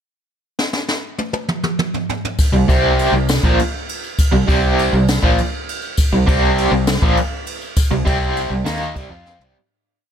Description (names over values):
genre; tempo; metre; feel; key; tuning
psychedelic rock; 67 BPM (dotted quarters); 6/8; straight; C minor; A4 = 438 Hz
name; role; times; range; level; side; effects
jazz brush drum kit; drums; 0.6-9.6 s; kick drum, ride cymbal, snare drum, toms; -18 LUFS; equal; none
tambourine; percussion; 2.4-9.3 s; none; -30 LUFS; left 11 dB; none
cranked stack guitar; riff; 2.5-9.6 s; Bb2 to F4; -17 LUFS; right 1 dB; overdrive, tremolo
fingered electric bass; bass; 2.5-9.5 s; Bb1 to F2; -20 LUFS; equal; none
room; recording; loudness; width
small room ambience; none; -15 LUFS; side -8 dB against mid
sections
0.6-2.4 pickup bar; 2.4-9.6 riff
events
drum fill 0.6-2.4, 9.3; fade-out 7.8-9.6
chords
0.6 N.C.; 2.4 Cm